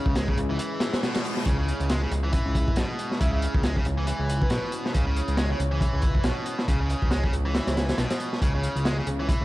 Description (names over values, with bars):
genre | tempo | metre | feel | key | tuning
breakbeat, breaks | 138 BPM | 4/4 | swing 57% on 16ths | C# minor pentatonic | A4 = 440 Hz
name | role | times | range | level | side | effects
deep dark ambient pad | sustained chords | 0.0-9.4 s | G#3 to C#5 | -36 LUFS | right 1 dB | chorus, built-in reverb, sidechain pumping
distorted electric guitar | riff | 0.0-9.4 s | B2 to G#3 | -31 LUFS | equal | overdrive, tape echo
fat analog bass | bass | 0.1-9.4 s | B1 to C#2 | -26 LUFS | equal | tube saturation
crunchy breakbeat drum kit | drums | 0.1-9.4 s | hi-hat, kick drum, snare drum | -26 LUFS | equal | none
reverse cymbal | sound effects | 0.8-1.5 s | none | -39 LUFS | left 3 dB | none
breathy flute-like synth lead | melody | 3.2-4.7 s | B4 to E5 | -37 LUFS | equal | chorus, telephone sound, tape echo
room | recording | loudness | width
small room ambience | dark, warm production, vinyl crackle | -23 LUFS | side -17 dB against mid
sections
0.0-9.4 A section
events
break 0.6-1.5; reverse cymbal 0.8-1.5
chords
0.0 C#m